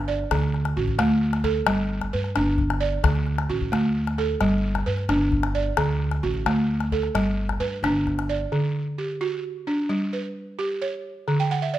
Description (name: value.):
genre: west african traditional, West African string and xylophone music.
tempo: 88 BPM (dotted quarters).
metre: 12/8.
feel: straight.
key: D major.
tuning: A4 = 440 Hz.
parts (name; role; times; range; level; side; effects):
balafon; arpeggios; 0.0-11.8 s; D3 to G5; -24 LUFS; right 2 dB; none.
upright bass; bass; 0.0-8.4 s; G1 to G2; -26 LUFS; equal; none.
calabash; percussion; 0.3-8.3 s; none; -28 LUFS; left 5 dB; none.
room: light reverb.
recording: none.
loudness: -22 LUFS.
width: side -13 dB against mid.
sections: 0.0-8.5 A section; 8.5-11.8 B section.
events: balafon fill 11.4-11.8.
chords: 0.3 D; 1.7 G; 3.0 D; 4.4 G; 5.8 D; 7.1 G; 8.5 D; 9.9 G; 11.3 D.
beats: | 0.31 0.99 1.67 2.35 | 3.04 3.72 4.41 5.09 | 5.77 6.46 7.14 7.83 | 8.52 9.21 9.90 10.59 | 11.28.